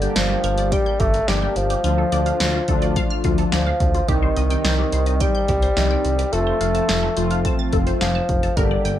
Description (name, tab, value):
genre	synth-pop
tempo	107 BPM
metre	4/4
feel	straight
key	unclear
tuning	A4 = 441 Hz
part	mellow bassoon	melody	0.0-9.0 s	D3 to A3	-23 LUFS	equal	ping-pong delay
part	mellow synth brass	accompaniment	0.0-8.9 s	Eb3 to G4	-25 LUFS	left 1 dB	chorus
part	resonant blip pluck	arpeggios	0.0-8.9 s	F4 to A6	-30 LUFS	left 1 dB	phaser
part	smooth synth bass	bass	0.0-9.0 s	F1 to D2	-22 LUFS	equal	none
part	punchy analog drum machine	drums	0.0-9.0 s	hi-hat, kick drum, snare drum	-23 LUFS	equal	none
room	moderate studio reverb, RT60 0.6 s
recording	none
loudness	-17 LUFS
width	side -12 dB against mid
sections	0.0-9.0 A section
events	none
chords	0.0 Gm; 1.8 Dm; 4.1 Cm; 6.3 F